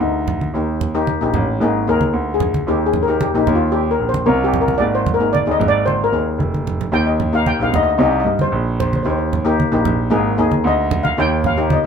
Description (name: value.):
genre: calypso.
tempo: 113 BPM.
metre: 4/4.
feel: straight.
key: Eb major.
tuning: A4 = 440 Hz.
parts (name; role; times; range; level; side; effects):
steel pan; melody; 0.0-11.9 s; Eb4 to G5; -19 LUFS; left 3 dB; none.
steel pan; accompaniment; 0.0-11.9 s; Bb3 to Ab4; -21 LUFS; left 3 dB; none.
dark concert grand piano; bass; 0.0-11.7 s; F1 to G2; -20 LUFS; right 2 dB; none.
congas; percussion; 0.3-11.8 s; none; -22 LUFS; right 3 dB; none.
room: light reverb.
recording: minimal, uncompressed stereo recording.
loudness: -15 LUFS.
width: side -7 dB against mid.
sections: 0.0-11.9 A section.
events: steel pan solo 0.0-11.9; drum fill 6.4-6.9.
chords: 0.0 Cm; 0.5 Eb; 1.6 Absus2; 2.7 Eb; 4.8 Absus2; 6.9 Eb; 8.0 Cm; 9.1 Eb; 10.1 Absus2; 11.2 Eb.